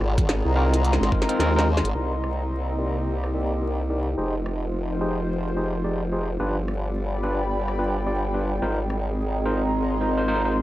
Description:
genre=glitch hop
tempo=108 BPM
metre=4/4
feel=swing 60% on 16ths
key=C minor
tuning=A4 = 440 Hz
part: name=warbly tape-like pad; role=sustained chords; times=0.0-10.6 s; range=C3 to B4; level=-31 LUFS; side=left 1 dB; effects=chorus, built-in reverb, phaser, sidechain pumping
part: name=formant-sweep wobble bass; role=bass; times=0.0-10.6 s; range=F1 to Eb2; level=-25 LUFS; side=equal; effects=chorus
part: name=glitchy drum kit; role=drums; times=0.0-9.0 s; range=hi-hat, rim click, snare drum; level=-29 LUFS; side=equal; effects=low-pass filter on hats, low-pass filter on snare, low-pass filter on room
part: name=airy breathy pad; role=texture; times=0.0-10.6 s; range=C4 to C6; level=-30 LUFS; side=right 1 dB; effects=chorus, sidechain pumping
part: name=electronic kick drum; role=drums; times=0.2-1.3 s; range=none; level=-23 LUFS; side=equal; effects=overdrive
part: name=overdriven tine electric piano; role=stabs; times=0.6-10.6 s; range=C4 to Eb5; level=-28 LUFS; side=equal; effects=vintage 12-bit sampler grit, sidechain pumping, low-pass filter, analog delay
room=little or no reverb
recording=dry, gritty hardware recording, transformer saturation, vinyl crackle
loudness=-22 LUFS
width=side -15 dB against mid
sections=0.0-2.0 A section; 2.0-10.6 B section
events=filter sweep on tine electric piano 0.0-2.0, 2.0-10.6; drum fill 0.8-2.0; kick drops out 1.4-2.0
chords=0.0 Ab69; 2.0 Cm7; 4.2 Fm9; 6.4 G7; 8.6 Ab69

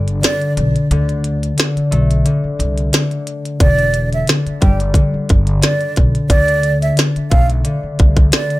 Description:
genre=hip hop, boom-bap hip-hop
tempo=89 BPM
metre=4/4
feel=swing 54% on 16ths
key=unclear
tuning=A4 = 435 Hz
part: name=concert harp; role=accompaniment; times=0.0-8.6 s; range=D3 to A3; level=-18 LUFS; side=left 1 dB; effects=cassette tape
part: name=upright bass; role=bass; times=0.0-8.3 s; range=E1 to D2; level=-18 LUFS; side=equal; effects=none
part: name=glitchy drum kit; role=drums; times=0.1-8.6 s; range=hi-hat, kick drum, rim click, snare drum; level=-14 LUFS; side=equal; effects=none
part: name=breathy concert flute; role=melody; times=0.2-8.6 s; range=D5 to G5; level=-20 LUFS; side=right 3 dB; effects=digital delay
room=little or no reverb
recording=none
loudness=-12 LUFS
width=side -18 dB against mid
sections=0.0-8.6 A section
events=break 0.0-3.6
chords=0.0 Em7 (rootless); 0.9 D5; 3.6 Em7; 6.3 D5

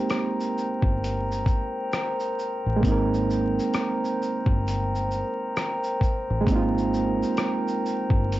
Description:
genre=lo-fi hip hop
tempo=66 BPM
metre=4/4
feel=swing 63% on 16ths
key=Ab major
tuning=A4 = 440 Hz
part: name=barky reed electric piano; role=accompaniment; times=0.0-8.4 s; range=Ab3 to Bb4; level=-27 LUFS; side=right 3 dB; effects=overdrive, low-pass filter, cassette tape
part: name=glass harmonica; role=sustained chords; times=0.0-8.4 s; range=Bb4 to Bb5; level=-29 LUFS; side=left 1 dB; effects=low-pass filter, cassette tape
part: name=dusty soul sampler-style drum kit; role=drums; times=0.1-8.4 s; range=hi-hat, kick drum, rim click, shaker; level=-26 LUFS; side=equal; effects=cassette tape
part: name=deep dub fingered electric bass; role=bass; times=0.8-8.4 s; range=G1 to A1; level=-27 LUFS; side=equal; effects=none
room=moderate studio reverb, RT60 0.6 s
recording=home recording on cassette, vinyl crackle, nothing above 7.6 kHz, faint mains hum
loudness=-23 LUFS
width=side -15 dB against mid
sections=0.0-8.4 A section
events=none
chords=0.0 Abmaj9

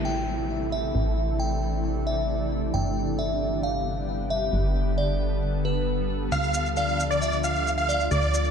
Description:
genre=uplifting trance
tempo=134 BPM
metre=4/4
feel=straight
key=unclear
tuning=A4 = 438 Hz
part: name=glassy synth bell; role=second line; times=0.0-8.5 s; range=B4 to G5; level=-31 LUFS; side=equal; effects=chorus, ping-pong delay
part: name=plucky analog bass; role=bass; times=0.0-8.5 s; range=G1 to D2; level=-28 LUFS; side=equal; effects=none
part: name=downlifter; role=sound effects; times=0.0-2.7 s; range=none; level=-39 LUFS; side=left 1 dB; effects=none
part: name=dense compressed supersaw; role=melody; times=6.3-8.5 s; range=D5 to F5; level=-25 LUFS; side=right 1 dB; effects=ping-pong delay
part: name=wide unison pluck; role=second line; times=6.3-8.5 s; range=D5 to F5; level=-35 LUFS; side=left 1 dB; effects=none
part: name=maracas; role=percussion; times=6.3-8.5 s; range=none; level=-36 LUFS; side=equal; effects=none
room=moderate concert hall reverb, RT60 2.1 s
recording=dark, warm production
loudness=-23 LUFS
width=side -7 dB against mid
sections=0.0-8.5 A section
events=none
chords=0.0 Am; 2.7 G; 6.3 Dm

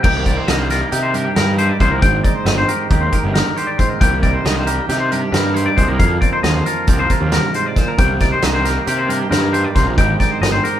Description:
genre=math rock and midwest emo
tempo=272 BPM (eighths)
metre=9/8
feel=straight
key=unclear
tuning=A4 = 440 Hz
part: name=twangy electric guitar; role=accompaniment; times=0.0-10.8 s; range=F2 to G4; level=-22 LUFS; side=right 6 dB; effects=none
part: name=twangy electric guitar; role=arpeggios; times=0.0-10.8 s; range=G4 to G5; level=-20 LUFS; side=left 4 dB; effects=none
part: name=fuzz picked electric bass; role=bass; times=0.0-10.6 s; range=G1 to C3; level=-20 LUFS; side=equal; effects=overdrive
part: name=loose indie drum kit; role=drums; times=0.0-10.7 s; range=crash cymbal, hi-hat, kick drum, snare drum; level=-18 LUFS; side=equal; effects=none
room=moderate stone room reverb, RT60 1.4 s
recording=band playing live in one room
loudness=-14 LUFS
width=side -11 dB against mid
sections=0.0-10.8 A section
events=none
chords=0.0 Cm7; 2.0 Abmaj7; 4.0 Cm7; 6.0 F7sus4; 8.0 Cm7; 10.0 Abmaj7

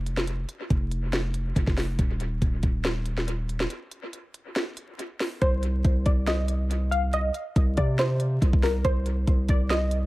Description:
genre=hip hop, trap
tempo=140 BPM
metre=4/4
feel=half-time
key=C minor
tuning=A4 = 440 Hz
part: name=distorted 808-style bass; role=bass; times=0.0-10.1 s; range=Eb1 to C3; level=-26 LUFS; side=equal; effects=distortion
part: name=trap drum kit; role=drums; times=0.1-10.0 s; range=hi-hat, kick drum, snare drum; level=-26 LUFS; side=equal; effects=dub echo
part: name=warbly dusty pluck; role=melody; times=5.4-10.1 s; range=Bb4 to F5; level=-29 LUFS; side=equal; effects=chorus, dub echo
room=light reverb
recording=echo-heavy mix, vinyl crackle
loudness=-23 LUFS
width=side -18 dB against mid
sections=0.0-5.4 A section; 5.4-10.1 B section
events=break 0.0-5.4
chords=0.0 N.C.; 5.4 Cm

